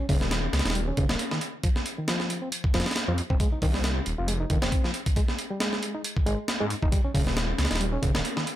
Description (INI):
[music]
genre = breakbeat, breaks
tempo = 136 BPM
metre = 4/4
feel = swing 55% on 16ths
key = F minor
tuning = A4 = 440 Hz
[part]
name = barky reed electric piano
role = riff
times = 0.0-8.4 s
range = Db3 to F4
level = -31 LUFS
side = equal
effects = overdrive, fast tremolo, tube saturation, low-pass filter, ping-pong delay
[part]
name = phased detuned saw bass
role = bass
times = 0.1-8.2 s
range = Eb1 to Ab2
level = -28 LUFS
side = equal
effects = phaser, tube saturation
[part]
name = breakbeat sampler-style drum kit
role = drums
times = 0.1-8.6 s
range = hi-hat, kick drum, snare drum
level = -26 LUFS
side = equal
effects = none
[sound]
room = digital ambience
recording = none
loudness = -24 LUFS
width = side -13 dB against mid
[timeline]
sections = 0.0-8.6 A section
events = filter sweep on reed electric piano 0.0-8.6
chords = 0.0 Eb5; 1.6 F7(no3); 5.2 Ab5; 6.9 Eb5